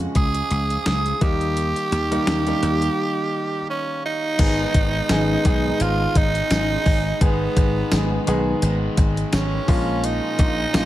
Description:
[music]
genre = 1980s-style pop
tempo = 85 BPM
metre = 4/4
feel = swing 55% on 16ths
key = G# dorian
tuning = A4 = 441 Hz
[part]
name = warm concert grand piano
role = accompaniment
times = 0.0-10.9 s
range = C#3 to G#4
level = -26 LUFS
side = equal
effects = none
[part]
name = dry thumbed slap bass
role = bass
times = 0.0-10.9 s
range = G#1 to D#2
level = -23 LUFS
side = equal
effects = none
[part]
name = raspy tenor saxophone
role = melody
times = 0.2-10.9 s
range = B3 to G#4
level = -24 LUFS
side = right 2 dB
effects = digital delay
[part]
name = clean 12-bit digital drum machine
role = drums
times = 0.2-10.9 s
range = crash cymbal, hi-hat, kick drum, snare drum, tambourine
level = -21 LUFS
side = equal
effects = overdrive
[part]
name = cranked stack guitar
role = accompaniment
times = 4.4-10.9 s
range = G#2 to A#3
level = -31 LUFS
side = left 4 dB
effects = overdrive, lush chorus
[sound]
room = light reverb, digital ambience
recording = none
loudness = -18 LUFS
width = side -14 dB against mid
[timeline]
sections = 0.0-4.4 A section; 4.4-10.9 B section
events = break 3.0-4.4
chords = 0.0 C#; 1.2 D#; 4.4 G#m; 9.7 A#m7

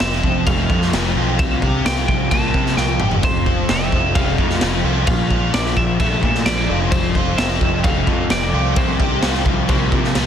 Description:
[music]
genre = rock, shoegaze and dream pop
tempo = 130 BPM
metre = 4/4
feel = straight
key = F major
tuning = A4 = 441 Hz
[part]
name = twelve-string electric guitar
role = melody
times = 0.0-10.1 s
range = C5 to A5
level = -24 LUFS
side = equal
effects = slapback echo
[part]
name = overdriven semi-hollow guitar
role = riff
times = 0.0-10.3 s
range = F2 to G4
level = -20 LUFS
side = left 1 dB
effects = analog chorus
[part]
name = growling picked electric bass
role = bass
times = 0.0-10.3 s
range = F1 to C3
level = -22 LUFS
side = equal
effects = overdrive
[part]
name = raw garage drum kit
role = drums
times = 0.0-10.3 s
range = crash cymbal, kick drum, snare drum, toms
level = -19 LUFS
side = equal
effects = none
[sound]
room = small room ambience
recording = dense, heavily limited modern master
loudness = -15 LUFS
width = side -9 dB against mid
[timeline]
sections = 0.0-10.3 A section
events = drum fill 2.8-3.2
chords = 0.0 F; 1.4 C7sus4; 3.2 F; 5.1 Bbmaj7; 6.9 F; 8.8 C7sus4

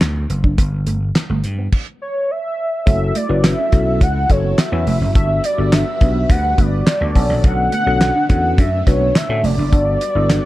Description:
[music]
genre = early-eighties boogie funk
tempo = 105 BPM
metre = 4/4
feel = straight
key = B minor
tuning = A4 = 440 Hz
[part]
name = mellow electric guitar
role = riff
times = 0.0-10.4 s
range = A3 to E4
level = -26 LUFS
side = right 4 dB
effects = wide subtle chorus
[part]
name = vintage slap bass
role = bass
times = 0.0-10.4 s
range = E#1 to A2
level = -19 LUFS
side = equal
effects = none
[part]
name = damped 70s drum kit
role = drums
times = 0.0-10.4 s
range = crash cymbal, handclaps, hi-hat, kick drum, snare drum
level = -15 LUFS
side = equal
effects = none
[part]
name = warm velvety synth lead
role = melody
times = 2.0-10.5 s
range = C#5 to F#5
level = -20 LUFS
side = equal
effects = chorus, slapback echo
[part]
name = tine electric piano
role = accompaniment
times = 2.9-10.4 s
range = B3 to B4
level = -23 LUFS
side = left 3 dB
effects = overdrive, phaser
[part]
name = string machine, full ensemble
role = sustained chords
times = 2.9-10.5 s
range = D3 to B4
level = -29 LUFS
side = equal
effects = ensemble chorus
[sound]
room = small room ambience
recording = dark, warm production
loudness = -14 LUFS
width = side -16 dB against mid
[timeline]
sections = 0.0-2.9 A section; 2.9-10.5 B section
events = stop 1.7-2.9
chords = 0.0 Bm; 0.6 N.C.; 2.9 F#m7; 5.2 Gmaj7; 7.2 Bm9; 9.7 Gmaj7

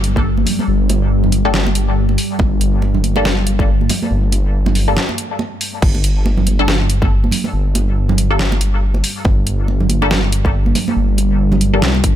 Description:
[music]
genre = deep dubstep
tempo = 140 BPM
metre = 4/4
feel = swing 58% on 16ths, half-time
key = G minor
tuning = A4 = 438 Hz
[part]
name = deep dark ambient pad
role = sustained chords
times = 0.0-12.2 s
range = G3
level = -22 LUFS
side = left 1 dB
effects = chorus, built-in reverb
[part]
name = dark detuned saw bass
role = bass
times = 0.0-12.2 s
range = G1 to C2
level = -16 LUFS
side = equal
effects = none
[part]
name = dubstep drum kit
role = drums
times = 0.0-12.1 s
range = crash cymbal, hi-hat, snare drum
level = -21 LUFS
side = equal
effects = overdrive
[part]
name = electronic kick drum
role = drums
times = 0.2-12.1 s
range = none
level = -16 LUFS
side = equal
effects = overdrive
[part]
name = congas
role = percussion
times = 0.2-12.0 s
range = none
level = -23 LUFS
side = right 4 dB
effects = dub echo
[part]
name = filtered dub chord stab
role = stabs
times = 1.4-11.8 s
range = G3 to A4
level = -23 LUFS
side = left 2 dB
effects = phaser, wide subtle chorus, dub echo
[sound]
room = light reverb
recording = none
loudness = -13 LUFS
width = side -11 dB against mid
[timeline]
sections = 0.0-12.2 A section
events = break 5.0-5.8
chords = none

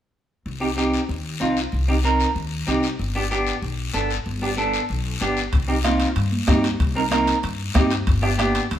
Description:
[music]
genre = latin, cumbia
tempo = 189 BPM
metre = 4/4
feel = straight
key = C dorian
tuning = A4 = 440 Hz
[part]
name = upright bass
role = bass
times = 0.5-8.8 s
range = G1 to G2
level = -25 LUFS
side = left 1 dB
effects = none
[part]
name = guiro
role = percussion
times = 0.5-8.8 s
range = none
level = -31 LUFS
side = left 6 dB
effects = none
[part]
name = semi-hollow electric guitar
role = accompaniment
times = 0.6-8.6 s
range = B3 to Bb4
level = -22 LUFS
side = right 2 dB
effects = none
[part]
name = bombo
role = percussion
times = 5.5-8.6 s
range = none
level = -22 LUFS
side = left 1 dB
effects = none
[part]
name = timbales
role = percussion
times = 5.5-8.8 s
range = none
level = -32 LUFS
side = right 3 dB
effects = none
[part]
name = congas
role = percussion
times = 5.8-8.5 s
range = none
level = -28 LUFS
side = right 2 dB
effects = none
[sound]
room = moderate stone room reverb, RT60 1.0 s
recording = band playing live in one room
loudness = -19 LUFS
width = side -11 dB against mid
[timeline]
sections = 0.5-5.5 A section; 5.5-8.8 B section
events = none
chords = 0.5 Cm; 3.0 G; 5.5 Cm; 8.1 G

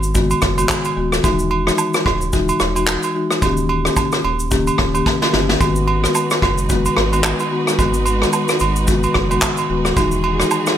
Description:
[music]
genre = afrobeats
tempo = 110 BPM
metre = 4/4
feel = swing 58% on 16ths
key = G# minor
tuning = A4 = 437 Hz
[part]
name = sub bass with octave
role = bass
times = 0.0-10.4 s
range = D#1 to G#1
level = -22 LUFS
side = equal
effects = none
[part]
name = soft brush drum kit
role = drums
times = 0.0-10.8 s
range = handclaps, kick drum, rim click, shaker, snare drum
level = -19 LUFS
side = equal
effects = none
[part]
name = marimba with medium mallets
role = accompaniment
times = 0.1-10.5 s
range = D#3 to G4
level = -20 LUFS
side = left 3 dB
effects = none
[part]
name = agogo bells and woodblock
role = percussion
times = 0.3-10.7 s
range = none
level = -22 LUFS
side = right 8 dB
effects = none
[part]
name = bright studio string section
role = sustained chords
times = 5.6-10.8 s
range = E3 to B4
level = -25 LUFS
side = right 2 dB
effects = none
[sound]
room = light reverb, small room ambience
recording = none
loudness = -15 LUFS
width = side -10 dB against mid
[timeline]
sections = 0.0-10.8 A section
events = drum fill 5.1-5.6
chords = 0.0 G#m7; 1.2 Emaj9; 3.4 D#7; 5.6 G#m7; 10.0 Emaj9

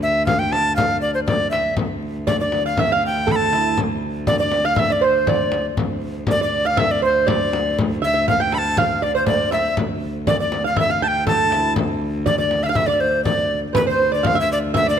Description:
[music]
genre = medieval dance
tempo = 120 BPM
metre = 2/4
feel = straight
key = D minor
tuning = A4 = 440 Hz
[part]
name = bright reedy tenor recorder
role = melody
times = 0.0-15.0 s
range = B4 to B5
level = -20 LUFS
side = left 1 dB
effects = none
[part]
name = clear viola da gamba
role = drone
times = 0.0-15.0 s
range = D2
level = -26 LUFS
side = equal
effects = none
[part]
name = frame drum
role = percussion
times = 0.0-15.0 s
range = none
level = -24 LUFS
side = left 3 dB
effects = none
[part]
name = lute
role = second line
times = 2.3-15.0 s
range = E4 to G5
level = -23 LUFS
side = right 7 dB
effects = none
[sound]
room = moderate concert hall reverb, RT60 1.9 s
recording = close, detailed microphones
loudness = -17 LUFS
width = side -8 dB against mid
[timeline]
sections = 0.0-5.8 A section; 5.8-13.8 A section; 13.8-15.0 B section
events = none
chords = none

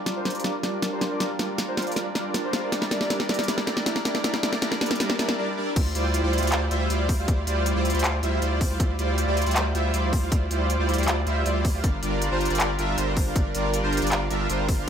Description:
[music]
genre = future bass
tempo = 158 BPM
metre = 4/4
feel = half-time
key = D minor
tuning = A4 = 440 Hz
[part]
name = soft supersaw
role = riff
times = 0.0-14.9 s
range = G3 to F5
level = -26 LUFS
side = right 1 dB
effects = wide subtle chorus, sidechain pumping, low-pass filter, tape echo
[part]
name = pop drum kit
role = drums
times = 0.1-14.8 s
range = crash cymbal, handclaps, hi-hat, snare drum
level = -27 LUFS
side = equal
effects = none
[part]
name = saturated sub bass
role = bass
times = 5.8-14.9 s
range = G1 to D2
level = -26 LUFS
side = equal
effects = sidechain pumping
[part]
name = electronic kick drum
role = drums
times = 5.8-14.8 s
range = none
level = -23 LUFS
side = equal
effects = none
[sound]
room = moderate digital room reverb, RT60 1.2 s, digital ambience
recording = none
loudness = -22 LUFS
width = side -8 dB against mid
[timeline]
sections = 0.0-5.8 A section; 5.8-14.9 B section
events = build-up 0.0-5.8; drum fill 0.0-5.4; filter sweep on supersaw synth 0.0-5.8; break 5.4-5.8; drop 5.8-14.9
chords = 0.0 Gm7; 2.7 Gm6; 5.8 Dm11; 11.8 Gm7

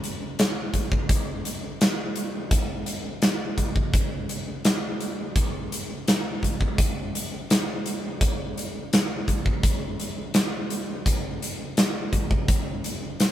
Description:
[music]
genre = rock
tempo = 84 BPM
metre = 4/4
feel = straight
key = none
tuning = none
[part]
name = huge arena drum kit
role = drums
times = 0.0-13.3 s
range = hi-hat, kick drum, snare drum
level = -23 LUFS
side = equal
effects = none
[sound]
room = light reverb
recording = band playing live in one room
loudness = -23 LUFS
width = side -12 dB against mid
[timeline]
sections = 0.0-13.3 A section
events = none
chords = none

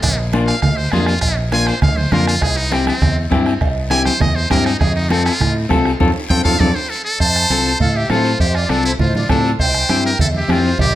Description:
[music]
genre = latin, cumbia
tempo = 201 BPM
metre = 4/4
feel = straight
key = F major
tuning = A4 = 441 Hz
[part]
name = trumpet with metal mute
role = melody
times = 0.0-10.9 s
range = C4 to Ab5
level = -20 LUFS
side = equal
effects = tape echo
[part]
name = modern bright fingered electric bass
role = bass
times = 0.0-10.9 s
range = Bb1 to A2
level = -20 LUFS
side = equal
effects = none
[part]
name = bombo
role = percussion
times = 0.0-10.9 s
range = none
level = -21 LUFS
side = right 2 dB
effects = none
[part]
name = congas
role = percussion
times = 0.0-10.9 s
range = none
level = -22 LUFS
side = right 2 dB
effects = none
[part]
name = cowbell and timbales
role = percussion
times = 0.0-10.9 s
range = none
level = -28 LUFS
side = right 4 dB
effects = none
[part]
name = guiro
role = percussion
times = 0.0-10.9 s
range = none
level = -34 LUFS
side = left 4 dB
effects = none
[part]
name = clean electric guitar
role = accompaniment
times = 0.3-10.7 s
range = Bb3 to A4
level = -19 LUFS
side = left 4 dB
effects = none
[part]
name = accordion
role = second line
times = 7.2-10.9 s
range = A4 to A5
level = -25 LUFS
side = right 1 dB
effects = light tremolo tuning
[sound]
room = moderate large studio reverb, RT60 0.8 s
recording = none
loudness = -13 LUFS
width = side -13 dB against mid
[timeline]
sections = 0.0-7.2 A section; 7.2-10.9 B section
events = muted trumpet solo 0.0-7.2; band accent 6.0-7.2; drum fill 6.6-7.2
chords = 0.0 Bb; 2.4 C; 4.8 F; 9.6 C

